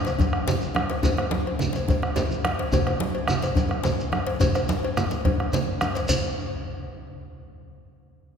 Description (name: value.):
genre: west african traditional, West African drum ensemble.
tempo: 143 BPM (dotted quarters).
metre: 12/8.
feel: straight.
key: none.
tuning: none.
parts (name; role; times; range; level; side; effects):
djembe; percussion; 0.0-6.2 s; none; -30 LUFS; left 3 dB; none.
congas; percussion; 0.1-6.2 s; none; -28 LUFS; right 4 dB; none.
cowbell; percussion; 0.1-6.2 s; none; -31 LUFS; left 2 dB; none.
shekere; percussion; 0.1-6.2 s; none; -32 LUFS; equal; none.
bombo; percussion; 0.2-6.2 s; none; -27 LUFS; left 1 dB; none.
room: wet church reverb, RT60 3.1 s.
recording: recorded in a church or concert hall.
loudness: -22 LUFS.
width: side -7 dB against mid.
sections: 0.0-6.1 A section; 6.1-7.8 B section.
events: none.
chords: none.